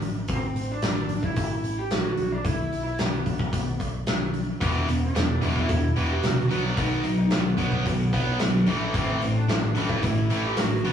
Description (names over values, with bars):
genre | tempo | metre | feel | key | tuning
hard rock | 111 BPM | 4/4 | straight | unclear | A4 = 440 Hz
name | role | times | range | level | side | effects
hollow-body short-scale picked electric bass | bass | 0.0-10.9 s | E1 to C2 | -30 LUFS | equal | none
big rock drum kit | drums | 0.0-10.9 s | hi-hat, kick drum, snare drum | -27 LUFS | left 1 dB | none
lead guitar through a small cranked amp | melody | 0.3-10.9 s | B3 to G4 | -31 LUFS | right 1 dB | overdrive
high-gain distorted guitar | riff | 4.6-10.9 s | E2 to B3 | -29 LUFS | left 3 dB | distortion
tight distorted guitar | riff | 4.6-10.9 s | E2 to B3 | -26 LUFS | right 2 dB | distortion
room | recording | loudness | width
moderate booth ambience, RT60 0.3 s | rough rehearsal-room recording, small room ambience | -22 LUFS | side -8 dB against mid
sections
0.0-10.9 A section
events
none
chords
0.0 Asus4; 2.2 Bsus4; 4.6 E5; 6.5 B5; 8.7 A5